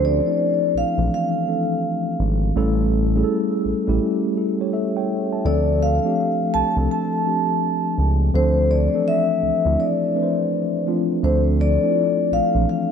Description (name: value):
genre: R&B, neo-soul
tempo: 83 BPM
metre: 4/4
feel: swing 64% on 16ths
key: D minor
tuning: A4 = 436 Hz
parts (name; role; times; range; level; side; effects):
- vibraphone with medium mallets; melody; 0.0-12.9 s; C5 to A5; -22 LUFS; left 2 dB; ping-pong delay
- mellow tine electric piano; accompaniment; 0.0-12.9 s; E3 to A5; -21 LUFS; equal; medium stereo tremolo
- smooth synth bass; bass; 0.0-12.7 s; G#1 to D2; -20 LUFS; equal; none
room: moderate lush hall reverb, RT60 2.7 s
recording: dreamy mix soaked in reverb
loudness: -18 LUFS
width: side -7 dB against mid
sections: 0.0-11.2 A section; 11.2-12.9 A section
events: none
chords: 0.0 Dm7; 2.5 A7; 5.4 Dm7